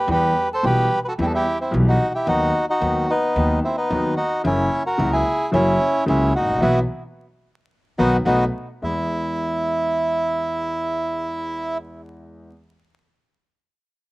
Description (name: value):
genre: tango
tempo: 110 BPM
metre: 4/4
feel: rubato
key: unclear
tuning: A4 = 438 Hz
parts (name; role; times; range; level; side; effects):
- bandoneon; melody; 0.0-11.8 s; B3 to C5; -20 LUFS; equal; none
- warm concert grand piano; accompaniment; 0.1-12.5 s; G#1 to G4; -24 LUFS; left 1 dB; none
- upright bass; bass; 0.1-9.1 s; F#1 to E2; -24 LUFS; equal; none
room: little or no reverb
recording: recorded outdoors, with no room sound, vinyl crackle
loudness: -18 LUFS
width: side -20 dB against mid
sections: 0.0-8.8 A section; 8.8-11.0 B section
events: band accent 6.6-8.8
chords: 0.1 Em; 2.3 B/D#; 4.4 F#7; 6.6 Bsus4; 7.7 B; 8.3 B7; 8.8 E